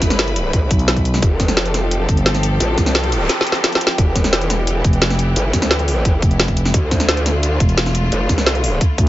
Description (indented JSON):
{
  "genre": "dark technical drum and bass",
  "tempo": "174 BPM",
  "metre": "4/4",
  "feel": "straight",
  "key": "E phrygian",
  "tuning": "A4 = 442 Hz",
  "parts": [
    { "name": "bright studio string section", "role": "sustained chords", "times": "0.0-9.1 s", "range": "D3 to B5", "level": "-24 LUFS", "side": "left 1 dB", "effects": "sidechain pumping" },
    { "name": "growl bass", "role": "bass", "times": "0.0-8.8 s", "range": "E1 to D2", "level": "-18 LUFS", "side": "equal", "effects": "chorus, overdrive, sidechain pumping" },
    { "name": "drum and bass drum kit", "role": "drums", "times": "0.0-9.1 s", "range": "hi-hat, snare drum", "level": "-18 LUFS", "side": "equal", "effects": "none" },
    { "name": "electronic kick drum", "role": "drums", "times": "0.0-9.1 s", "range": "none", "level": "-16 LUFS", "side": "equal", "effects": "none" },
    { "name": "growling FM bass", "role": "bass", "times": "0.7-2.6, 4.8-9.1 s", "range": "E1 to D2", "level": "-18 LUFS", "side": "equal", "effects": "none" },
    { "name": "noise sweep", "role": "sound effects", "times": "3.0-4.0 s", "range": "none", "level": "-27 LUFS", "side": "right 2 dB", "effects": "none" }
  ],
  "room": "little or no reverb",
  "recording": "nothing above 7.8 kHz",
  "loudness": "-14 LUFS",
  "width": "side -15 dB against mid",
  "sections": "0.0-9.1 A section",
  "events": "noise sweep 3.0-4.0; drum fill 3.3-4.0",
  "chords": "0.0 Asus2; 1.2 F; 4.0 Em7; 6.7 Dm"
}